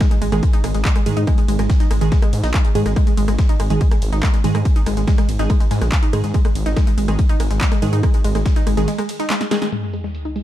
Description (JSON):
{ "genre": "driving peak-time techno", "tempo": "142 BPM", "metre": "4/4", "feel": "straight", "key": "unclear", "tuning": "A4 = 440 Hz", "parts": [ { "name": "wide unison pluck", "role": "riff", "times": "0.0-10.4 s", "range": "G#3 to D#4", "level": "-23 LUFS", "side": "left 1 dB", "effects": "tube saturation, sidechain pumping, ping-pong delay" }, { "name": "dusty soul sampler-style drum kit", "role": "drums", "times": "0.0-10.4 s", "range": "hi-hat, snare drum", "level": "-38 LUFS", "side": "equal", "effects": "high-pass filter on hats, low-pass filter on hats, studio reverb, high-pass filter on snare, low-pass filter on snare, high-pass filter on room, low-pass filter on room" }, { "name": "electronic kick drum", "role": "drums", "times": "0.0-8.5 s", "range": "none", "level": "-16 LUFS", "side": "equal", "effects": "overdrive, studio reverb" }, { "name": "techno drum kit", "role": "drums", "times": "0.0-9.8 s", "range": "crash cymbal, handclaps, hi-hat, ride cymbal, rim click, snare drum", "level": "-28 LUFS", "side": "equal", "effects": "overdrive, low-pass filter on hats, studio reverb, low-pass filter on cymbals, low-pass filter on snare" }, { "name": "detuned saw bass", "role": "bass", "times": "0.2-8.9 s", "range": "G#1 to G#2", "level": "-20 LUFS", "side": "equal", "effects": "sidechain pumping" }, { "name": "wavetable chord stab", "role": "stabs", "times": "0.3-9.7 s", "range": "D#3 to G#4", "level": "-25 LUFS", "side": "right 4 dB", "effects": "cassette tape, sidechain pumping, dub echo" }, { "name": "sub drop", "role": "sound effects", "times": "9.7-10.4 s", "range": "none", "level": "-26 LUFS", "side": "equal", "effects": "none" } ], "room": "digital ambience", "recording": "dark, warm production", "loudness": "-15 LUFS", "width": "side -13 dB against mid", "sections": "0.0-9.7 A section", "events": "drop 0.0-9.7; break 8.9-9.7; drum fill 9.3-9.7; band accent 9.6; impact 9.7-10.4", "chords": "0.0 G#5", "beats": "0.01 0.43 0.85 | 1.27 1.70 2.12 2.54 | 2.96 3.38 3.81 4.23 | 4.65 5.08 5.50 5.92 | 6.34 6.77 7.19 7.61 | 8.03 8.46 8.88 9.30 | 9.72 10.15" }